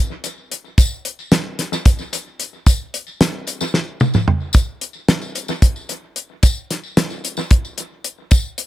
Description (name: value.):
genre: rock.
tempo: 223 BPM (eighths).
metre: 7/8.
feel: straight.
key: none.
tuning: none.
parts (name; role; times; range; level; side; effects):
damped 70s drum kit; drums; 0.2-8.7 s; hi-hat, kick drum, snare drum, toms; -15 LUFS; equal; analog delay.
tambourine; percussion; 0.2-8.4 s; none; -29 LUFS; left 2 dB; analog delay.
room: little or no reverb.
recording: echo-heavy mix.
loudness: -16 LUFS.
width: side -14 dB against mid.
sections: 0.0-4.5 A section; 4.5-8.7 B section.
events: drum fill 3.7-4.5.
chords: none.